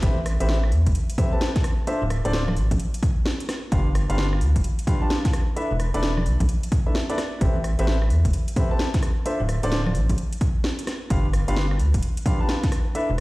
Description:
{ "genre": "UK garage, two-step garage", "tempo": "130 BPM", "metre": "4/4", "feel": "swing 64% on 16ths", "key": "unclear", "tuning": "A4 = 439 Hz", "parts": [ { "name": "dark baby grand piano", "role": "stabs", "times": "0.0-13.1 s", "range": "C4 to A5", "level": "-28 LUFS", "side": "equal", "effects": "tape echo" }, { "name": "rubbery square bass", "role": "bass", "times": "0.0-13.2 s", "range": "D1 to E2", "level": "-21 LUFS", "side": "equal", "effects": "none" }, { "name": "electronic kick drum", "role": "drums", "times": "0.0-12.7 s", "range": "none", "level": "-23 LUFS", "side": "equal", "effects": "overdrive" }, { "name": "house drum kit", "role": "drums", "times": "0.0-13.1 s", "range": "congas, hi-hat, rim click, snare drum", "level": "-29 LUFS", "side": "equal", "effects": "overdrive" } ], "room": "little or no reverb", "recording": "played on a big sound system in a bare room, stone room reverb, vinyl crackle", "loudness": "-20 LUFS", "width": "side -20 dB against mid", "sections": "0.0-13.2 A section", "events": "none", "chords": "0.0 Am9; 1.6 Dm7; 3.7 G7; 5.6 E7sus4; 7.4 Am9; 9.0 Dm7; 11.1 G7", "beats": "| 0.03 0.49 0.95 1.41 | 1.87 2.33 2.79 3.26 | 3.72 4.18 4.64 5.10 | 5.56 6.03 6.49 6.95 | 7.41 7.87 8.33 8.79 | 9.26 9.72 10.18 10.64 | 11.10 11.56 12.03 12.49 | 12.95" }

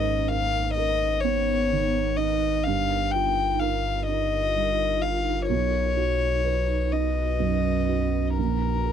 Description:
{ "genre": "neoclassical piano and strings", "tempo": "42 BPM (dotted quarters)", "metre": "6/8", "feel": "rubato", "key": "G# dorian", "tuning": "A4 = 440 Hz", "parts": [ { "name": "warm violin", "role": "melody", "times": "0.0-8.9 s", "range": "A#4 to G5", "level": "-26 LUFS", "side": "left 6 dB", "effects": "none" }, { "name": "felt-muted upright piano", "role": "accompaniment", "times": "0.0-8.9 s", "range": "A#1 to B4", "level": "-28 LUFS", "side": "right 11 dB", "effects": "none" }, { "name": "ethereal airy pad", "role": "sustained chords", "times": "0.0-8.9 s", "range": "B3 to B4", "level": "-34 LUFS", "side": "equal", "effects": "ensemble chorus, built-in reverb, phaser" }, { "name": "pure sine sub bass", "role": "bass", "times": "0.0-8.9 s", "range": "G1 to B1", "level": "-28 LUFS", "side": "equal", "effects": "none" } ], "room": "little or no reverb", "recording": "dry, close 1970s-style studio recording", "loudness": "-22 LUFS", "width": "side -8 dB against mid", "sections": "0.0-8.9 A section", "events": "none", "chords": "0.0 G#madd9; 2.7 D#add9/G; 5.5 B; 8.4 A#m", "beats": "1.24 | 2.66 4.08 | 5.50 6.93 | 8.38" }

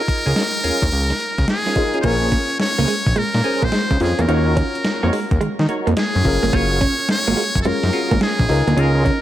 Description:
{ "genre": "R&B, new jack swing", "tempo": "107 BPM", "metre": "4/4", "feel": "swing 65% on 16ths", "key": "Bb minor", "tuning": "A4 = 439 Hz", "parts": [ { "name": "trumpet with metal mute", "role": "melody", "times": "0.0-9.2 s", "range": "Ab4 to Db5", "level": "-22 LUFS", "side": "equal", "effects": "none" }, { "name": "warm grand piano", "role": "accompaniment", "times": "0.0-9.2 s", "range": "Db4 to C5", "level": "-26 LUFS", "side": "left 3 dB", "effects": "none" }, { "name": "percussive tonewheel organ", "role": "stabs", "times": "0.0-9.0 s", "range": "Db4 to Db5", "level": "-26 LUFS", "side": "right 1 dB", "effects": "chorus vibrato, slow rotary speaker" }, { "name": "crisp 8-bit digital drum machine", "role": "drums", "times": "0.1-9.2 s", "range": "crash cymbal, hi-hat, kick drum, snare drum", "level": "-22 LUFS", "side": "equal", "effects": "overdrive, vintage 12-bit sampler grit" }, { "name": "fat analog bass", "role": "bass", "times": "0.3-9.1 s", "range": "Gb1 to Eb3", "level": "-19 LUFS", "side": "equal", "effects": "none" }, { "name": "direct-recorded clean electric guitar", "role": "riff", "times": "2.0-9.2 s", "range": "Ab3 to Eb4", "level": "-24 LUFS", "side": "right 3 dB", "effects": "lush chorus" } ], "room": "light reverb", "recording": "none", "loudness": "-16 LUFS", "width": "side -13 dB against mid", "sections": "0.0-2.0 A section; 2.0-9.2 B section", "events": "none", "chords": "0.0 Db6; 2.0 Bbm9; 4.3 Ebm7; 6.3 Gbmaj9; 8.5 Db6", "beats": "0.36 0.93 1.49 | 2.05 2.61 3.17 3.73 | 4.29 4.85 5.41 5.97 | 6.53 7.09 7.65 8.21 | 8.78" }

